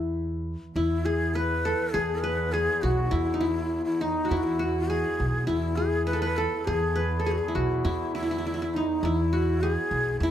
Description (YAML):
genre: arabic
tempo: 102 BPM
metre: 4/4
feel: straight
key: E maqam ajam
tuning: A4 = 441 Hz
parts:
  - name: qanun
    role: melody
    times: 0.0-10.3 s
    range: D#4 to B4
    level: -27 LUFS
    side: left 1 dB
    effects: none
  - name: upright bass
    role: bass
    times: 0.0-10.3 s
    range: B1 to E2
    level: -29 LUFS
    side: right 1 dB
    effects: none
  - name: breathy bright ney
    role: second line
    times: 0.8-10.3 s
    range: D#4 to B4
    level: -30 LUFS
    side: left 1 dB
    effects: none
  - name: muted cello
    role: drone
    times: 0.8-10.3 s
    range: E2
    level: -37 LUFS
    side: right 2 dB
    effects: none
room: little or no reverb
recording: close, detailed microphones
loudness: -24 LUFS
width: side -10 dB against mid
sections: 0.8-10.3 A section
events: none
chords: none